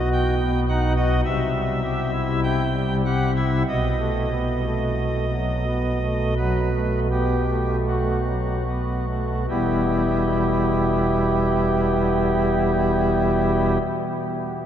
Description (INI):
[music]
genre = classical, chorale-style piece for pipe organ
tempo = 36-54 BPM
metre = 4/4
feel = rubato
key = E minor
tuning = A4 = 440 Hz
[part]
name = pipe organ, cornet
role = solo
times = 0.0-13.8 s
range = E1 to G5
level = -20 LUFS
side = equal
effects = none
[sound]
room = wet cathedral reverb, RT60 7.4 s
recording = none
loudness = -20 LUFS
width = side -9 dB against mid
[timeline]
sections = 0.0-9.5 A section; 9.5-14.7 B section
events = slowing down 0.0-9.5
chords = 0.0 B; 1.3 C; 3.7 B7; 9.5 Em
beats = 0.11 1.25 2.44 | 3.67 4.98 6.38 7.87 | 9.50 11.10 12.72